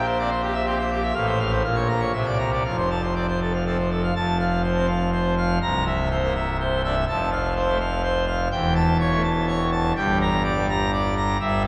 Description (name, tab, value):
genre	classical, organ toccata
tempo	123 BPM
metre	3/4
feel	straight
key	F major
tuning	A4 = 440 Hz
part	pipe organ, full organ	solo	0.0-11.7 s	C1 to Bb5	-23 LUFS	equal	none
room	wet cathedral reverb, RT60 5.0 s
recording	heard from further back in the room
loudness	-23 LUFS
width	mono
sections	0.0-4.2 A section; 4.2-11.7 B section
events	none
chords	0.0 C7/Bb; 1.2 F/A; 1.7 Bbm; 2.1 C9; 2.7 F; 5.6 C7; 7.1 F; 8.5 A7/E; 10.0 Gm